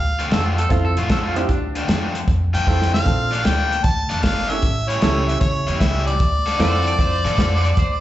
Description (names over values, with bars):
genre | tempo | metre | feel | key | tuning
electric blues shuffle | 153 BPM | 4/4 | swing 68% on 8ths | D minor | A4 = 439 Hz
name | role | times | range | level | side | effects
warm harmonica | melody | 0.0-8.0 s | C#5 to A5 | -22 LUFS | left 1 dB | overdrive, slapback echo
upright bass | bass | 0.0-8.0 s | G1 to A2 | -21 LUFS | equal | none
overdriven semi-hollow guitar | riff | 0.2-7.7 s | A2 to A4 | -26 LUFS | left 3 dB | slapback echo
warm soul drum kit | drums | 0.2-7.9 s | hi-hat, kick drum, snare drum | -22 LUFS | equal | none
electric guitar at the edge of break-up | second line | 0.3-2.1, 6.6-8.0 s | D4 to D5 | -27 LUFS | right 2 dB | tremolo, slapback echo
clear upright piano | accompaniment | 0.7-7.2 s | C4 to A4 | -27 LUFS | right 5 dB | slapback echo
room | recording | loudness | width
light reverb, studio reverb | live gig heard through the venue's PA, club reverb, nothing above 8.0 kHz | -16 LUFS | side -14 dB against mid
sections
0.0-8.0 A section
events
drum fill 2.7-3.1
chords
0.0 Dm7; 3.1 Bbmaj7; 4.6 A7; 6.2 Dm7